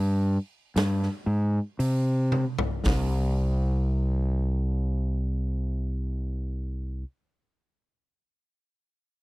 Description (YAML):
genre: stoner and doom metal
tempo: 55-61 BPM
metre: 4/4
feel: straight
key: unclear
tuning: A4 = 440 Hz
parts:
  - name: growling fingered electric bass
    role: bass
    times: 0.0-7.0 s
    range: C2 to C3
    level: -24 LUFS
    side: equal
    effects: overdrive
  - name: big rock drum kit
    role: drums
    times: 0.8-3.1 s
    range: hi-hat, kick drum, snare drum, toms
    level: -29 LUFS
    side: equal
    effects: none
room: little or no reverb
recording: dry, close 1970s-style studio recording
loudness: -25 LUFS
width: side -21 dB against mid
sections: 0.0-2.9 A section; 2.9-7.3 B section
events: slowing down 0.0-2.9; drum fill 2.3-2.9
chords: none